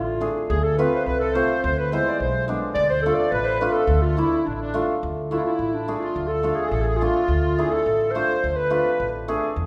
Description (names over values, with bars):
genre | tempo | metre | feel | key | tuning
klezmer | 106 BPM | 2/4 | straight | D dorian sharp4 | A4 = 441 Hz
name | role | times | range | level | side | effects
mellow clarinet | melody | 0.0-9.1 s | D4 to D5 | -27 LUFS | equal | none
upright bass | bass | 0.0-9.7 s | A1 to E2 | -29 LUFS | equal | none
hammered dulcimer | accompaniment | 0.2-9.4 s | G#3 to G#4 | -28 LUFS | equal | none
accordion | second line | 0.5-9.1 s | D4 to D5 | -30 LUFS | equal | light tremolo tuning
room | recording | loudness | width
wet recital hall reverb, RT60 1.8 s | recorded in a church or concert hall | -22 LUFS | mono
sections
0.0-5.0 A section; 5.0-9.7 B section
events
clarinet solo 5.0-9.7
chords
0.5 F/D; 1.6 E/D (rootless); 2.8 Dm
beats
| 0.49 1.05 | 1.62 2.19 | 2.76 3.32 | 3.89 4.46 | 5.03 5.59 | 6.16 6.73 | 7.30 7.87 | 8.43 9.00 | 9.57